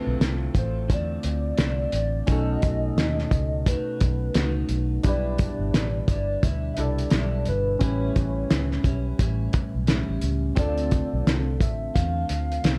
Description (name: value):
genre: indie pop, bedroom pop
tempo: 87 BPM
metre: 4/4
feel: swing 60% on 16ths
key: D dorian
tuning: A4 = 440 Hz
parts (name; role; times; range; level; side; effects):
- warbly nostalgic lead; melody; 0.0-12.8 s; B4 to F5; -34 LUFS; equal; subtle chorus, tape echo
- clean electric guitar; accompaniment; 0.0-12.8 s; A2 to F#4; -34 LUFS; equal; subtle chorus, warbly pitch drift
- soft electric-piano-like synth keys; accompaniment; 0.0-12.8 s; C4 to B4; -37 LUFS; equal; chorus, cassette tape
- vintage muted fingered electric bass; bass; 0.1-12.8 s; G1 to E2; -29 LUFS; equal; none
- cloth-damped thuddy drum kit; drums; 0.2-12.8 s; hi-hat, kick drum, snare drum; -26 LUFS; equal; none
room: light reverb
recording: dark, warm production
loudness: -24 LUFS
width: mono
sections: 0.0-12.8 A section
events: none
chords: 0.0 Dm7; 2.3 B7; 5.0 Em7; 7.8 A7; 10.6 Dm7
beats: 0.20 0.89 1.58 | 2.28 2.97 3.66 4.35 | 5.04 5.74 6.43 7.12 | 7.81 8.50 9.19 9.88 | 10.58 11.27 11.96 12.65